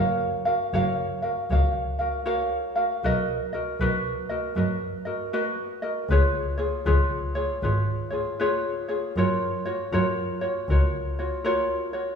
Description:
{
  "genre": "Hawaiian",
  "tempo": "78 BPM",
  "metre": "4/4",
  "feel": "swing 63% on 8ths",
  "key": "F# major",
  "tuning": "A4 = 440 Hz",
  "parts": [
    { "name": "ukulele", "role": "accompaniment", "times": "0.0-12.2 s", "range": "E#4 to E#5", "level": "-25 LUFS", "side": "equal", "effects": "none" },
    { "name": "rich double bass", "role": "bass", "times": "0.0-10.8 s", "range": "F#1 to F#2", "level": "-26 LUFS", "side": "equal", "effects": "none" }
  ],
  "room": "wet recital hall reverb, RT60 1.6 s",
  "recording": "heard from further back in the room",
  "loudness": "-23 LUFS",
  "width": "side -6 dB against mid",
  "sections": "0.0-12.2 A section",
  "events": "none",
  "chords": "0.0 F#maj7; 3.0 Bmaj7; 6.1 C#7; 9.2 F#maj7"
}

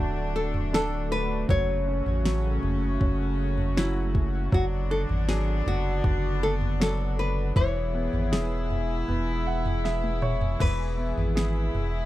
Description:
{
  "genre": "pop ballad",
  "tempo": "79 BPM",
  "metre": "4/4",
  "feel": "straight",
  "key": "unclear",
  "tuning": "A4 = 441 Hz",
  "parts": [
    { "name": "nylon-string guitar", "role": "melody", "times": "0.0-12.1 s", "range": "E4 to C#5", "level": "-31 LUFS", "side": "left 2 dB", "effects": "tape echo" },
    { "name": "warm chamber cello section", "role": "second line", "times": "0.0-12.1 s", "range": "C#4 to E4", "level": "-34 LUFS", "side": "left 2 dB", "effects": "tape echo" },
    { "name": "clear baby grand piano", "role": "accompaniment", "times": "0.0-12.1 s", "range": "D3 to F#5", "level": "-35 LUFS", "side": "right 3 dB", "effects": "none" },
    { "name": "chorused pulse-width pad", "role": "sustained chords", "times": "0.0-12.1 s", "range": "C#3 to G#4", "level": "-35 LUFS", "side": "equal", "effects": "none" },
    { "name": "saturated sub bass", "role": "bass", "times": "0.0-12.1 s", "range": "D1 to A1", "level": "-28 LUFS", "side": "equal", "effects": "none" },
    { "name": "smooth R&B drum kit", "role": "drums", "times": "0.5-11.9 s", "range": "crash cymbal, kick drum, snare drum, toms", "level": "-28 LUFS", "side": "equal", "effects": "none" }
  ],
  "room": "small room ambience",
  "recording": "dry, close 1970s-style studio recording",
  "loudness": "-24 LUFS",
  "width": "side -15 dB against mid",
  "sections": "0.0-12.1 A section",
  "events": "grand piano fill 9.1-10.6; drum fill 9.8-10.6",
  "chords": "0.0 D; 1.5 F#m; 4.5 Bm/F#; 7.6 E"
}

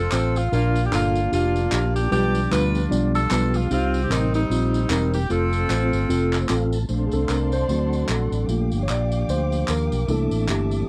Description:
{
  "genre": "uptempo gospel",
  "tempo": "151 BPM",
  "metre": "4/4",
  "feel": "swing 58% on 8ths",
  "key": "Bb major",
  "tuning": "A4 = 441 Hz",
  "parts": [
    { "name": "bright saxophone section", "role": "melody", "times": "0.0-6.5 s", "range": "G3 to B4", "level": "-28 LUFS", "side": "equal", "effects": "slapback echo" },
    { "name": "fingered electric bass", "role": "bass", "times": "0.0-10.8 s", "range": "E1 to Eb2", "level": "-26 LUFS", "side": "equal", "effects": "none" },
    { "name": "mellow tine electric piano", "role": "accompaniment", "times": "0.1-10.9 s", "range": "Bb2 to D5", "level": "-27 LUFS", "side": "equal", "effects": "none" },
    { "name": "handclaps and tambourine", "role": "percussion", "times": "0.1-10.8 s", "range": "none", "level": "-35 LUFS", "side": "equal", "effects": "none" },
    { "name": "mellow tonewheel organ", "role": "sustained chords", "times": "0.5-10.9 s", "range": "E3 to A5", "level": "-31 LUFS", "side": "equal", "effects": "slow rotary speaker, chorus vibrato" },
    { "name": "warm studio string section", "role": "sustained chords", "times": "6.9-10.9 s", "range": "D5 to D6", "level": "-38 LUFS", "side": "equal", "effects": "none" }
  ],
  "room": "little or no reverb",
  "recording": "dry, close 1970s-style studio recording",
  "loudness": "-22 LUFS",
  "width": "mono",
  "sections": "0.0-6.9 A section; 6.9-10.9 B section",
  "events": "tonewheel organ fill 6.1-6.9; tine electric piano solo 6.9-10.9",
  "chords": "0.0 F; 0.5 Bb; 2.1 G7/B; 3.7 Cm; 5.3 F; 6.9 Bbmaj9; 7.7 D7; 8.5 Gm7; 10.1 C13"
}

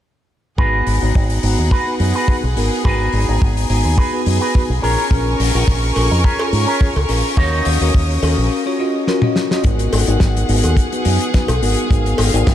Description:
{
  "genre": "nu-disco, nu disco",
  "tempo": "106 BPM",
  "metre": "4/4",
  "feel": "swing 54% on 16ths",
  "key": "G# dorian",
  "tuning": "A4 = 441 Hz",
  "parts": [
    { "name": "bell-like tine electric piano", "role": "accompaniment", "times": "0.6-12.5 s", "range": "B3 to A#5", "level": "-21 LUFS", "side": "left 1 dB", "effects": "phaser, sidechain pumping, low-pass filter, ping-pong delay" },
    { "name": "clear studio violin section", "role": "sustained chords", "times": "0.6-12.5 s", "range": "G#4 to D#6", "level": "-25 LUFS", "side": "equal", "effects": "sidechain pumping" },
    { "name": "electric guitar with an envelope filter", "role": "riff", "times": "0.6-8.4 s", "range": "C#4 to C#5", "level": "-23 LUFS", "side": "right 1 dB", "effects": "lush chorus, low-pass filter, ping-pong delay" },
    { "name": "fingered electric bass with an envelope filter", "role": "bass", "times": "0.6-12.5 s", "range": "G#1 to G#2", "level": "-17 LUFS", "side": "equal", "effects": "none" },
    { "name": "kick drum", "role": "drums", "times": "0.6-12.5 s", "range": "none", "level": "-15 LUFS", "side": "equal", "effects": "studio reverb" },
    { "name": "damped 70s drum kit", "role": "drums", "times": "0.9-12.5 s", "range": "hi-hat, snare drum, toms", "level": "-25 LUFS", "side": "left 3 dB", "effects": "studio reverb" },
    { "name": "cowbell", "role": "percussion", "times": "6.0-12.3 s", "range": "none", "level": "-27 LUFS", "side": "left 1 dB", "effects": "none" }
  ],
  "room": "light reverb, small room ambience",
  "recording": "none",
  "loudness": "-14 LUFS",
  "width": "side -11 dB against mid",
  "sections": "0.6-9.6 A section; 9.6-12.5 B section",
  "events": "filter sweep on fingered electric bass 0.6-9.6; filter sweep on tine electric piano 0.6-9.6, 9.6-12.5; break 8.5-9.6; drum fill 9.1-9.6",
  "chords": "0.6 G#m7; 4.8 A#m7; 7.4 D#m7; 9.6 G#m7"
}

